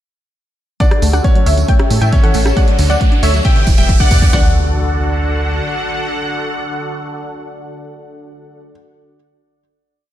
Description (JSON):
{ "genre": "uplifting trance", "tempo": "136 BPM", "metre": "4/4", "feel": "straight", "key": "D major", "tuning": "A4 = 441 Hz", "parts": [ { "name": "supersaw stab", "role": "melody", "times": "0.8-8.6 s", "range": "A4 to G5", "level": "-21 LUFS", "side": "equal", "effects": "sidechain pumping, low-pass filter, ping-pong delay" }, { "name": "analog pluck", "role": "second line", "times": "0.8-8.7 s", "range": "E5 to G5", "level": "-29 LUFS", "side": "left 1 dB", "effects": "none" }, { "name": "clear baby grand piano", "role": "second line", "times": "0.8-8.7 s", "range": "C#4 to D5", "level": "-26 LUFS", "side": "left 4 dB", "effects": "tape echo" }, { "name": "filtered supersaw swell", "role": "sustained chords", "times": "0.8-8.6 s", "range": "D3 to E5", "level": "-24 LUFS", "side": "equal", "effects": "sidechain pumping" }, { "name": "wide unison pluck", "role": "arpeggios", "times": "0.8-4.5 s", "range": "B2 to D4", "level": "-22 LUFS", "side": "right 1 dB", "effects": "sidechain pumping, ping-pong delay" }, { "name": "punchy analog drum machine", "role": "drums", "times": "0.8-4.4 s", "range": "kick drum, snare drum", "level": "-13 LUFS", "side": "equal", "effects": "none" }, { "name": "punchy analog drum machine", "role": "drums", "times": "0.8-4.3 s", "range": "hi-hat, rim click", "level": "-26 LUFS", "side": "equal", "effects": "none" }, { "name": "tambourine", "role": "percussion", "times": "0.8-4.3 s", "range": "none", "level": "-29 LUFS", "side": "right 4 dB", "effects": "none" }, { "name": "riser and impact", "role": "sound effects", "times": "1.9-8.7 s", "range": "none", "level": "-25 LUFS", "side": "equal", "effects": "none" }, { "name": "tight sequencer bass", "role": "bass", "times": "1.0-5.6 s", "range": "E1 to A2", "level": "-15 LUFS", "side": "equal", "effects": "sidechain pumping" } ], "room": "light reverb, digital ambience", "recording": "none", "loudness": "-11 LUFS", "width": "side -12 dB against mid", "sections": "0.8-4.3 build; 4.3-7.9 final chord", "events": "build-up 0.8-4.3; filter sweep on supersaw synth 0.8-4.3; riser 1.9-4.3; drum fill 2.6-4.3", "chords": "0.8 D; 1.7 A; 2.6 D; 3.5 Em7; 4.3 D", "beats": "| 0.80 1.24 1.69 2.13 | 2.57 3.01 3.45 3.89 | 4.33 4.77 5.21 5.66 | 6.10 6.54 6.98 7.42" }